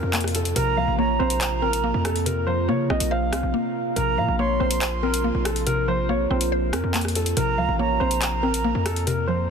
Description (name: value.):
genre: hip hop, drill.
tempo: 141 BPM.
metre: 4/4.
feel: half-time.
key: unclear.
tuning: A4 = 438 Hz.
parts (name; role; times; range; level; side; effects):
dark concert grand piano; melody; 0.0-9.5 s; A4 to F5; -27 LUFS; equal; ping-pong delay.
mallet-like synth pluck; accompaniment; 0.0-9.5 s; C3 to C5; -28 LUFS; left 1 dB; chorus, phaser.
deep dark ambient pad; sustained chords; 0.0-9.5 s; C3 to Bb4; -30 LUFS; right 2 dB; chorus, built-in reverb.
hard-hitting 808-style bass; bass; 0.0-9.5 s; A1 to Db3; -26 LUFS; equal; none.
downlifter; sound effects; 0.0-0.6 s; none; barely audible; none; none.
drill drum kit; drums; 0.1-9.2 s; handclaps, hi-hat, rim click; -29 LUFS; left 1 dB; none.
silver concert flute; second line; 0.6-9.0 s; Bb5 to C6; -29 LUFS; right 8 dB; ping-pong delay.
room: little or no reverb.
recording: dense, heavily limited modern master.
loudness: -20 LUFS.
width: side -6 dB against mid.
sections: 0.0-9.5 A section.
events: break 3.5-4.0.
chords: 0.0 Bbsus2.